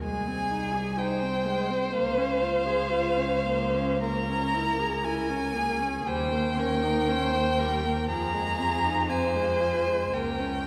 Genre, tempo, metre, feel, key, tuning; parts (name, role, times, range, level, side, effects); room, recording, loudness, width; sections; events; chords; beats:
classical, slow romantic movement for string quartet; 51-63 BPM; 4/4; rubato; A4 = 437 Hz
rich violin; melody; 0.0-10.7 s; F5 to Bb5; -33 LUFS; equal
rich violin; second line; 0.0-10.7 s; Ab4 to C5; -31 LUFS; equal
warm viola; accompaniment; 0.0-10.7 s; F3 to Ab4; -35 LUFS; equal
rich cello; bass; 0.0-10.7 s; C2 to F2; -34 LUFS; equal
wet concert hall reverb, RT60 2.5 s; heard from further back in the room; -27 LUFS; mono
0.0-10.7 A section
0.0 Ab/C; 1.9 Bbm7/Db; 4.0 Bbm7b5/Db; 6.1 Eb7; 8.1 Fm7; 10.1 Bbm/Db
| 0.04 0.99 1.95 2.92 | 4.02 5.05 6.07 7.08 | 8.09 9.10 10.13